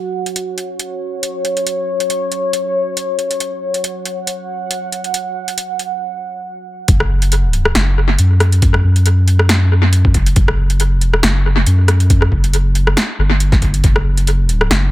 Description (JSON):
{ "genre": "deep dubstep", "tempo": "138 BPM", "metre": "4/4", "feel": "swing 55% on 16ths, half-time", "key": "unclear", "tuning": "A4 = 437 Hz", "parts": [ { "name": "deep dark ambient pad", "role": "sustained chords", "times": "0.0-6.9 s", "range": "F#4 to F#5", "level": "-20 LUFS", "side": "equal", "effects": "chorus, built-in reverb" }, { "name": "deep house drum kit", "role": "drums", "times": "0.3-14.8 s", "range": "hi-hat, rim click, snare drum", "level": "-18 LUFS", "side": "equal", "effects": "overdrive, analog delay" }, { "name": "soft dub sub bass", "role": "bass", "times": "6.9-14.9 s", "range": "F#1 to F#2", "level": "-12 LUFS", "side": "equal", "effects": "none" }, { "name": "electronic kick drum", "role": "drums", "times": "6.9-13.9 s", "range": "none", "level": "-13 LUFS", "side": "equal", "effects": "overdrive" } ], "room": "little or no reverb", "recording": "echo-heavy mix", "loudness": "-13 LUFS", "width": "side -16 dB against mid", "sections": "0.0-6.9 A section; 6.9-14.9 B section", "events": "break 6.0-6.9; drop 6.9-14.9", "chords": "0.0 F#5" }